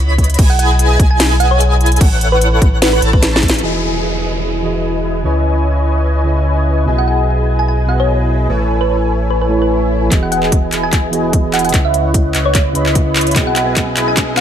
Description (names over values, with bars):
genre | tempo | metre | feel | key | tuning
future bass | 148 BPM | 4/4 | swing 55% on 16ths, half-time | E major | A4 = 445 Hz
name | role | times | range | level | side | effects
airy dreamy lead | arpeggios | 0.0-3.6 s | F#5 to B5 | -22 LUFS | equal | chorus, sidechain pumping
big bright polysynth | riff | 0.0-14.4 s | E4 to B5 | -19 LUFS | left 1 dB | ensemble chorus, sidechain pumping
saturated sub bass | bass | 0.0-14.4 s | E1 to C#2 | -16 LUFS | equal | sidechain pumping
electronic kick drum | drums | 0.2-3.5, 10.1-14.3 s | none | -13 LUFS | equal | none
trap drum kit | drums | 0.2-14.4 s | crash cymbal, handclaps, hi-hat, snare drum | -18 LUFS | equal | low-pass filter on hats, low-pass filter on snare, low-pass filter on cymbals
thumb-piano-like synth pluck | melody | 0.5-3.6, 7.0-14.4 s | B4 to G#5 | -19 LUFS | right 1 dB | chorus, phaser, sidechain pumping, tape echo
mellow tine electric piano | accompaniment | 3.6-14.4 s | B2 to G#5 | -20 LUFS | right 3 dB | sidechain pumping
downlifter, swell and riser | sound effects | 3.6-14.4 s | none | -25 LUFS | right 2 dB | none
room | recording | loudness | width
light reverb, digital ambience | high-pass filter | -11 LUFS | side -9 dB against mid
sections
0.0-3.6 A section; 3.6-10.1 B section; 10.1-14.4 C section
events
drop 0.0-3.6; drum fill 3.2-3.6, 10.1-14.4; band accent 3.5; swell 9.4-10.1; build-up 10.1-14.4; filter sweep on analog polysynth 10.1-14.4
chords
0.4 Emaj7/B; 2.0 Aadd9; 3.6 Emaj7; 5.3 C#m9; 6.9 Emaj7/B; 8.5 Amaj9; 10.1 Emaj7; 11.7 C#m9; 13.4 Emaj7/B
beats
| 0.39 0.79 1.20 1.60 | 2.01 2.41 2.82 3.23 | 3.63 4.04 4.44 4.85 | 5.25 5.66 6.06 6.47 | 6.87 7.28 7.68 8.09 | 8.49 8.90 9.31 9.71 | 10.12 10.52 10.93 11.33 | 11.74 12.14 12.55 12.96 | 13.36 13.77 14.17